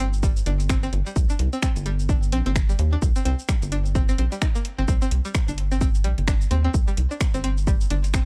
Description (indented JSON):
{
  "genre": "minimal techno",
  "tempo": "129 BPM",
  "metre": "4/4",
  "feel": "swing 58% on 16ths",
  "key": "C minor",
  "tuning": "A4 = 440 Hz",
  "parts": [
    { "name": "string-like resonator pluck", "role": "riff", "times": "0.0-8.2 s", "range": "G3 to Eb4", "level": "-33 LUFS", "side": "equal", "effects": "chorus, sidechain pumping, tape echo" },
    { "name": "rubbery square bass", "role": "bass", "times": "0.0-8.3 s", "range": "G1 to Eb2", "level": "-25 LUFS", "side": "equal", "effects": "sidechain pumping" },
    { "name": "booming analog drum machine", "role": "drums", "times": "0.0-8.2 s", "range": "finger snaps, hi-hat, shaker", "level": "-35 LUFS", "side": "equal", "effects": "none" },
    { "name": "electronic kick drum", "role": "drums", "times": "0.2-8.2 s", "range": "none", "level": "-25 LUFS", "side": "equal", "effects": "none" }
  ],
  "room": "little or no reverb",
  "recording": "dry, gritty hardware recording, cassette tape",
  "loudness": "-23 LUFS",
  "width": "mono",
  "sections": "0.0-8.3 A section",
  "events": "none",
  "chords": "0.0 C5"
}